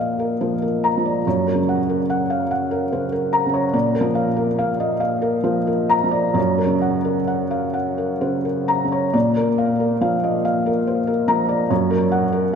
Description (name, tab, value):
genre	neoclassical minimalist piano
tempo	64-73 BPM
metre	3/4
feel	rubato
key	unclear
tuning	A4 = 440 Hz
part	felt-muted upright piano	solo	0.0-12.6 s	Gb2 to Bb5	-18 LUFS	equal	none
room	wet cathedral reverb, RT60 4.3 s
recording	recorded in a church or concert hall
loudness	-18 LUFS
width	side -7 dB against mid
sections	0.0-9.1 A section; 9.1-12.6 B section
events	none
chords	0.0 Bb; 1.3 Gb; 3.7 Bb; 6.4 Gb; 9.1 Bb; 11.7 Gb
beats	0.41 | 1.25 2.08 2.91 | 3.74 4.58 5.45 | 6.37 7.29 8.22 | 9.14 10.02 10.87 | 11.70 12.53